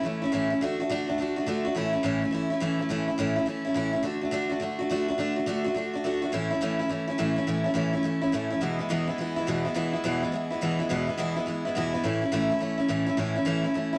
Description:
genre	rock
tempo	210 BPM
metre	4/4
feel	swing 65% on 8ths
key	A major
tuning	A4 = 440 Hz
part	picked steel-string acoustic guitar	solo	0.0-14.0 s	E2 to F#4	-28 LUFS	equal	none
room	moderate studio reverb, RT60 0.5 s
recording	none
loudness	-28 LUFS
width	mono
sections	0.0-13.2 A section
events	none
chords	0.0 A; 0.6 D; 1.8 A; 4.0 D; 6.3 A; 8.6 E; 12.0 A

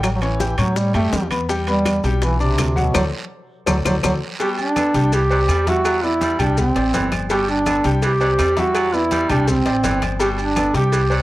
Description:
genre	latin, salsa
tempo	165 BPM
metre	4/4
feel	straight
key	G major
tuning	A4 = 440 Hz
part	warm duduk	melody	0.0-11.2 s	B2 to G4	-20 LUFS	right 1 dB	plate reverb
part	bright upright piano	accompaniment	0.0-11.2 s	F#3 to G6	-25 LUFS	left 3 dB	plate reverb
part	upright bass	bass	0.0-11.2 s	G1 to A2	-21 LUFS	equal	none
part	bongos and cowbell	percussion	0.0-11.1 s	none	-29 LUFS	left 5 dB	none
part	claves	percussion	0.0-10.7 s	none	-30 LUFS	left 3 dB	none
part	congas	percussion	0.0-11.2 s	none	-29 LUFS	left 2 dB	none
part	guiro	percussion	0.0-11.2 s	none	-35 LUFS	right 4 dB	none
part	maracas	percussion	0.0-11.2 s	none	-35 LUFS	left 3 dB	none
part	timbales and agogo bells	percussion	0.0-11.2 s	none	-30 LUFS	right 4 dB	none
part	breathy baritone saxophone	second line	4.4-11.2 s	B2 to G3	-27 LUFS	right 2 dB	plate reverb, analog delay
room	moderate small room reverb, RT60 0.6 s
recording	cassette tape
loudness	-16 LUFS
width	side -17 dB against mid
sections	0.0-4.4 A section; 4.4-11.2 B section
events	band accent 2.9-4.4; drum fill 3.5-4.4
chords	0.0 A7; 1.5 Em7; 2.9 D7; 4.4 G; 5.1 Cadd9; 5.9 Em7; 6.6 Cadd9; 7.3 G; 8.0 Cadd9; 8.8 Em7; 9.5 Cadd9; 10.2 G

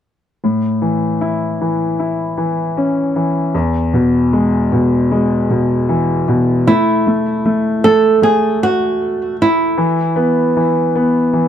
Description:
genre	pop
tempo	77 BPM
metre	4/4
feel	straight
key	A major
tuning	A4 = 440 Hz
part	clear concert grand piano	accompaniment	0.4-11.5 s	E2 to E4	-14 LUFS	left 1 dB	none
part	flamenco guitar	melody	6.7-10.5 s	E4 to A4	-14 LUFS	right 3 dB	none
room	moderate booth ambience, RT60 0.2 s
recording	dry, close 1970s-style studio recording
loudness	-13 LUFS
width	side -9 dB against mid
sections	0.4-6.7 A section; 6.7-11.5 B section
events	none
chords	0.4 A; 3.5 E; 6.7 N.C.; 9.8 E5

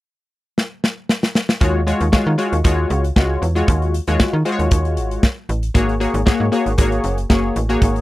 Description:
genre	early-eighties boogie funk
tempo	116 BPM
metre	4/4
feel	straight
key	Eb minor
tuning	A4 = 440 Hz
part	modern studio drum kit	drums	0.6-8.0 s	hi-hat, kick drum, snare drum	-16 LUFS	equal	none
part	funky polysynth comp	accompaniment	1.6-8.0 s	Ab3 to Db5	-19 LUFS	left 2 dB	chorus
part	slap-like FM bass	bass	1.6-8.0 s	Gb1 to Eb3	-19 LUFS	equal	none
room	little or no reverb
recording	dry, close 1970s-style studio recording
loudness	-15 LUFS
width	side -17 dB against mid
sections	0.0-1.6 A section; 1.6-8.0 B section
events	drum fill 0.6-1.6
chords	0.0 N.C.; 1.6 Ebm11; 5.8 Ab9sus4

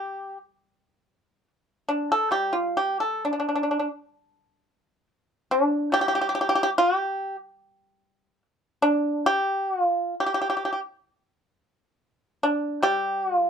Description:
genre	chinese traditional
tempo	64-73 BPM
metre	2/4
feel	rubato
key	unclear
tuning	A4 = 439 Hz
part	pipa	solo	0.0-13.5 s	G3 to A4	-22 LUFS	equal	none
room	light reverb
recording	dark, warm production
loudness	-22 LUFS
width	side -7 dB against mid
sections	0.0-4.2 A section; 4.2-13.5 B section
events	none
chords	none

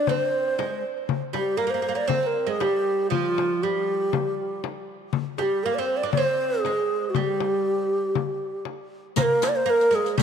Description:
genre	Arabic maqam ensemble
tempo	119 BPM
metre	4/4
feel	straight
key	G maqam kurd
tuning	A4 = 441 Hz
part	breathy reedy low ney	melody	0.0-10.2 s	F4 to D5	-23 LUFS	equal	none
part	oud	second line	0.0-10.2 s	F3 to D4	-29 LUFS	right 9 dB	tape echo
part	frame drum	percussion	0.1-10.2 s	none	-28 LUFS	left 12 dB	none
part	darbuka	percussion	9.2-10.2 s	none	-29 LUFS	right 11 dB	none
part	riq	percussion	9.2-10.2 s	none	-33 LUFS	left 17 dB	none
room	moderate plate reverb, RT60 3.8 s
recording	1960s-style stereo with parts hard left and right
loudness	-22 LUFS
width	side -7 dB against mid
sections	0.0-9.2 A section; 9.2-10.2 B section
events	none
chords	none

